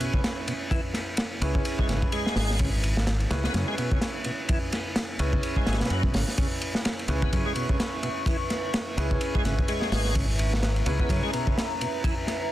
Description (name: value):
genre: breakbeat, breaks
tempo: 127 BPM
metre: 4/4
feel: swing 58% on 16ths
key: C# dorian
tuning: A4 = 439 Hz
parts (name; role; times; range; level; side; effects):
- bright tonewheel organ; riff; 0.0-12.1 s; B2 to B3; -33 LUFS; equal; chorus vibrato, slow rotary speaker, digital delay
- warm grand piano; stabs; 0.0-12.5 s; C#4 to B4; -34 LUFS; right 2 dB; digital delay
- crunchy breakbeat drum kit; drums; 0.0-12.4 s; hi-hat, kick drum, ride cymbal, snare drum; -27 LUFS; equal; none
- modern bright fingered electric bass; bass; 1.4-11.2 s; G#1 to F#2; -26 LUFS; equal; tube saturation
- dark analog pad; sustained chords; 7.0-12.5 s; B4 to C#6; -34 LUFS; left 1 dB; chorus, phaser, sidechain pumping
room: little or no reverb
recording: dense, heavily limited modern master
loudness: -24 LUFS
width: side -14 dB against mid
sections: 0.0-12.5 A section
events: none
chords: 0.0 C#m7